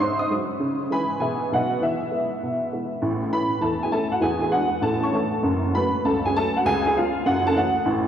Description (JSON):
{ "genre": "jazz, stride piano", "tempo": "199 BPM", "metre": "4/4", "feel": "swing 66% on 8ths", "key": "E major, A major from 3.0 s", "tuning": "A4 = 439 Hz", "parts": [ { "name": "honky-tonk upright piano", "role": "solo", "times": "0.0-8.1 s", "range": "F#1 to D#6", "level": "-20 LUFS", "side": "equal", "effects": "none" } ], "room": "wet cathedral reverb, RT60 5.0 s", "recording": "recorded in a church or concert hall", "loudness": "-20 LUFS", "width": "side -9 dB against mid", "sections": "0.0-3.0 A section; 3.0-8.1 B section", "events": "none", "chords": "0.0 G#7; 0.6 C#m7; 1.2 E/B; 1.5 B; 1.8 E; 3.0 A; 4.2 E9; 4.8 A; 5.4 F#m; 6.6 C#7; 7.3 F#m7" }